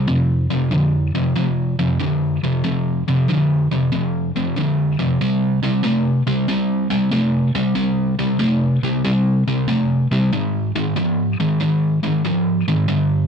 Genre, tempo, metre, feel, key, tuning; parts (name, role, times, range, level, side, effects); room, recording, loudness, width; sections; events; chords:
rock; 94 BPM; 4/4; swing 68% on 8ths; C minor; A4 = 440 Hz
sludgy distorted guitar; solo; 0.0-13.3 s; F2 to A3; -16 LUFS; equal; overdrive, slapback echo
little or no reverb; dry, close 1970s-style studio recording; -16 LUFS; side -6 dB against mid
0.0-13.3 A section
0.1 F5; 5.2 C5; 10.3 Ab5